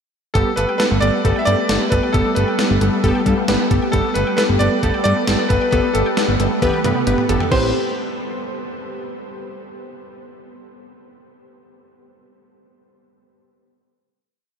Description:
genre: synth-pop.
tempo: 134 BPM.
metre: 4/4.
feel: straight.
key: unclear.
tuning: A4 = 440 Hz.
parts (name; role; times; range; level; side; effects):
bright grand piano; melody; 0.3-7.7 s; A4 to E5; -22 LUFS; equal; diffuse ambient delay.
ensemble organ-string; sustained chords; 0.3-7.7 s; A2 to G4; -24 LUFS; equal; phaser, ensemble chorus.
warm analog keys; accompaniment; 0.4-7.7 s; B3 to A5; -23 LUFS; equal; chorus.
resonant blip pluck; arpeggios; 0.4-7.7 s; G3 to G5; -28 LUFS; right 2 dB; chorus, diffuse ambient delay.
fat analog bass; bass; 0.4-7.7 s; G1 to G2; -20 LUFS; equal; none.
gated 80s digital drum machine; drums; 0.4-7.6 s; crash cymbal, hi-hat, kick drum, snare drum, toms; -22 LUFS; equal; gated reverb, gated reverb snare.
room: wet huge ambient reverb, RT60 7.7 s.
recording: dreamy mix soaked in reverb.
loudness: -15 LUFS.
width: side -7 dB against mid.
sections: 0.4-7.5 bridge; 7.5-9.3 final chord.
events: synth keys fill 3.0-3.9; drum fill 6.6-7.5.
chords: 0.4 Gadd9; 7.5 Am9.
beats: | 0.35 0.80 1.25 1.70 | 2.14 2.59 3.04 3.49 | 3.93 4.38 4.83 5.28 | 5.72 6.17 6.62 7.07 | 7.52.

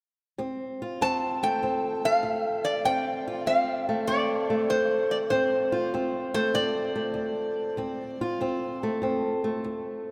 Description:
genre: acoustic country blues, solo or duo.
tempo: 98 BPM.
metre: 4/4.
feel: swing 68% on 8ths.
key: D minor.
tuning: A4 = 440 Hz.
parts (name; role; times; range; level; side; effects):
fingerpicked old ladder-braced acoustic guitar; accompaniment; 0.4-10.1 s; D2 to F4; -30 LUFS; equal; none.
metal-body resonator slide guitar; melody; 1.0-9.0 s; C5 to A5; -29 LUFS; equal; none.
room: wet cathedral reverb, RT60 5.9 s.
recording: in a vast, echoing space.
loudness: -27 LUFS.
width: mono.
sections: 0.4-10.1 A section.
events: none.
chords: 0.4 Dm7.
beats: | 0.39 1.01 1.62 2.24 | 2.85 3.47 4.08 4.70 | 5.31 5.93 6.54 7.16 | 7.78 8.39 9.01 9.62.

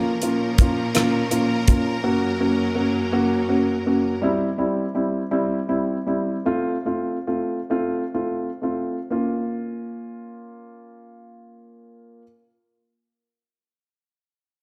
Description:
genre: six-eight pop ballad.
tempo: 40-56 BPM (dotted quarters).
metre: 6/8.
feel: straight.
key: Bb harmonic minor.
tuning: A4 = 440 Hz.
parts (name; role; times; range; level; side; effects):
warm upright piano; accompaniment; 0.0-12.2 s; G3 to Gb4; -24 LUFS; equal; slapback echo.
clear studio string section; sustained chords; 0.0-4.2 s; Gb2 to Bb4; -31 LUFS; equal; none.
damped 70s drum kit; drums; 0.2-1.8 s; hi-hat, kick drum, rim click; -21 LUFS; equal; none.
room: wet recital hall reverb, RT60 1.6 s, studio ambience.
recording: big arena sound.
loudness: -23 LUFS.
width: mono.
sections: 0.0-9.1 A section; 9.1-14.6 B section.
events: slowing down 4.2-9.1.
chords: 0.0 Bbm; 2.0 Gb; 4.2 C; 6.5 F; 9.1 Bbm.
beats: 0.95 | 2.04 3.13 | 4.21 5.31 | 6.46 7.72 | 9.12 10.61 | 12.09.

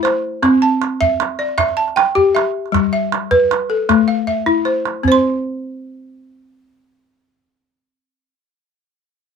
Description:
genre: west african traditional, West African string and xylophone music.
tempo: 104 BPM (dotted quarters).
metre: 12/8.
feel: straight.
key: C major.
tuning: A4 = 440 Hz.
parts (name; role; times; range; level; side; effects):
balafon; arpeggios; 0.0-8.8 s; G3 to C6; -14 LUFS; left 1 dB; none.
calabash; percussion; 0.1-5.2 s; none; -21 LUFS; right 7 dB; none.
room: light reverb.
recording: minimal, uncompressed stereo recording.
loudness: -14 LUFS.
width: side -6 dB against mid.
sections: 0.0-5.0 A section; 5.0-7.4 B section.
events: drum fill 4.3-5.0.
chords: 0.4 C; 2.7 G; 3.9 Am; 5.0 N.C..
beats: | 0.43 1.00 1.58 2.16 | 2.73 3.31 3.89 4.47 | 5.04 5.62 6.20 6.78.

